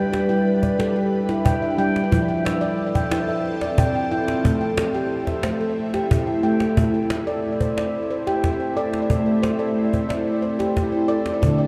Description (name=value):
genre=world meditative, meditative tuned percussion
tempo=181 BPM (eighths)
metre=7/8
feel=straight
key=A minor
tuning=A4 = 440 Hz
part: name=ethereal airy pad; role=sustained chords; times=0.0-11.7 s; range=F3 to B4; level=-26 LUFS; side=equal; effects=ensemble chorus, built-in reverb, phaser
part: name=handpan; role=arpeggios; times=0.0-11.7 s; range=D3 to G5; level=-25 LUFS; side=equal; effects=delay
part: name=cajon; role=percussion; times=0.1-11.6 s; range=none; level=-26 LUFS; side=equal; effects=none
room=wet huge ambient reverb, RT60 7.7 s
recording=in a vast, echoing space, cassette tape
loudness=-22 LUFS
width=mono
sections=0.0-6.8 A section; 6.8-11.7 B section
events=none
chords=0.0 G; 2.1 F; 4.4 Am